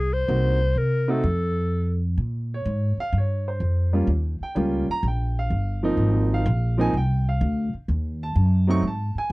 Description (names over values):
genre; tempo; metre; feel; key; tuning
jazz; 126 BPM; 4/4; swing 68% on 8ths; unclear; A4 = 440 Hz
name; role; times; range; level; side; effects
clear clarinet; melody; 0.0-2.0 s; Ab4 to C5; -26 LUFS; left 2 dB; none
upright bass; bass; 0.0-9.3 s; G1 to C3; -22 LUFS; equal; none
warm baby grand piano; accompaniment; 0.3-9.3 s; F3 to Db6; -26 LUFS; right 1 dB; none
room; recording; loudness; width
little or no reverb; dry, close 1970s-style studio recording; -21 LUFS; side -21 dB against mid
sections
0.0-2.2 A section; 2.2-9.3 B section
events
none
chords
0.3 Cm7b5; 1.2 F; 2.2 Bbm9; 4.1 Eb7; 6.0 Ab6; 7.9 Ebdim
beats
| 0.28 0.75 1.23 1.70 | 2.18 2.65 3.13 3.60 | 4.08 4.55 5.03 5.50 | 5.98 6.45 6.93 7.40 | 7.88 8.35 8.83 9.30